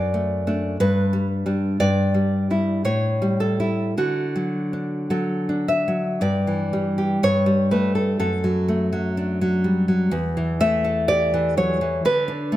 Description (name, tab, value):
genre	romantic piece for solo classical guitar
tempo	52-63 BPM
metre	2/4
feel	rubato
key	D major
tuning	A4 = 439 Hz
part	nylon-string guitar	solo	0.0-12.6 s	E2 to E5	-19 LUFS	equal	none
room	moderate recital hall reverb, RT60 1.5 s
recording	none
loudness	-19 LUFS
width	side -14 dB against mid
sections	0.0-6.2 A section; 6.2-12.6 B section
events	none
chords	0.0 D/F#; 0.8 G; 1.8 Em/G; 2.9 A7; 4.0 D; 6.2 Em/G; 7.2 A7/G; 8.2 D/F#; 10.1 A5/E; 12.0 N.C.